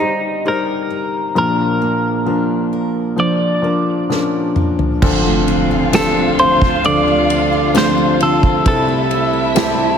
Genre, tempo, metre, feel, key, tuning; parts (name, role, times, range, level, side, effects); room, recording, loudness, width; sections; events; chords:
pop ballad; 66 BPM; 4/4; straight; D minor from 5.0 s; A4 = 441 Hz
clean electric guitar; melody; 0.0-10.0 s; Eb4 to D5; -18 LUFS; equal; phaser, slapback echo, ping-pong delay
felt-muted upright piano; accompaniment; 0.0-10.0 s; G1 to C5; -18 LUFS; left 5 dB; slapback echo
picked steel-string acoustic guitar; arpeggios; 0.0-10.0 s; Bb2 to Bb4; -22 LUFS; right 10 dB; slapback echo
unplugged drum kit; drums; 4.1-9.8 s; crash cymbal, kick drum, ride cymbal, snare drum, toms; -19 LUFS; right 1 dB
dark studio violin section; second line; 5.0-10.0 s; E4 to F5; -21 LUFS; right 2 dB; slapback echo, ping-pong delay
dark studio string section; sustained chords; 5.0-10.0 s; C2 to F4; -24 LUFS; equal
impact; sound effects; 5.1-8.7 s; -25 LUFS; right 1 dB
tambourine; percussion; 5.9-9.8 s; -33 LUFS; left 7 dB
moderate lush hall reverb, RT60 2.5 s; big arena sound; -13 LUFS; side -7 dB against mid
0.0-5.0 A section; 5.0-10.0 B section
drum fill 4.1-5.0; impact 5.0-8.7
0.0 Cm/G; 1.4 Bb; 5.0 Dm7; 8.7 C6